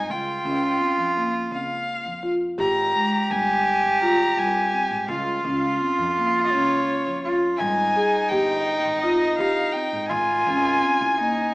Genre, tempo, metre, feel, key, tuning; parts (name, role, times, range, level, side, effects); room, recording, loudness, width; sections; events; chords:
contemporary instrumental, chamber music in an uneven meter; 168 BPM (eighths); 7/8; straight; Ab major; A4 = 440 Hz
rich violin; melody; 0.0-11.5 s; Db5 to Bb5; -24 LUFS; left 1 dB
clear cello; second line; 0.0-11.5 s; Eb4 to G4; -23 LUFS; right 1 dB
marimba with soft mallets; arpeggios; 0.0-11.4 s; G3 to Ab4; -25 LUFS; equal
upright bass; bass; 0.0-11.5 s; G1 to Ab2; -36 LUFS; equal
moderate recital hall reverb, RT60 1.3 s; small speaker sound; -20 LUFS; side -22 dB against mid
0.0-11.5 A section
0.1 Dbmaj7; 2.6 Abmaj7; 5.1 Db; 7.6 Abmaj7; 10.1 Ab